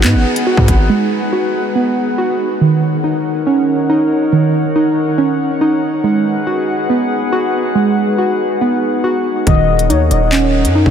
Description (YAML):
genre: hip hop, drill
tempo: 140 BPM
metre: 4/4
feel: half-time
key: Eb minor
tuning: A4 = 440 Hz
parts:
  - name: warbly tape-like pad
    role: sustained chords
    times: 0.0-10.9 s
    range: Eb4 to Gb5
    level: -19 LUFS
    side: left 1 dB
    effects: chorus, built-in reverb
  - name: warbly dusty pluck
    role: arpeggios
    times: 0.0-10.9 s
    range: Eb3 to Gb4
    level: -14 LUFS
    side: right 2 dB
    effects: chorus, tape echo
  - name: distorted 808-style bass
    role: bass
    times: 0.0-0.9, 9.5-10.9 s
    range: Eb1 to Ab2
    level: -14 LUFS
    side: equal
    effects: distortion
  - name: drill drum kit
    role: drums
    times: 0.0-0.8, 9.5-10.9 s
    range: handclaps, hi-hat, kick drum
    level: -19 LUFS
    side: equal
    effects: none
  - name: gliding portamento lead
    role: second line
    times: 9.5-10.3 s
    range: Db5 to Eb5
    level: -17 LUFS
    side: left 6 dB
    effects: chorus, tape echo
room: wet huge ambient reverb, RT60 7.8 s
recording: dreamy mix soaked in reverb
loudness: -12 LUFS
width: side -8 dB against mid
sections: 0.0-2.6 A section; 2.6-10.9 B section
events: break 0.9-2.6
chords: 0.0 Abm7; 2.6 Ebm7; 6.0 Abm7; 9.5 Ebm7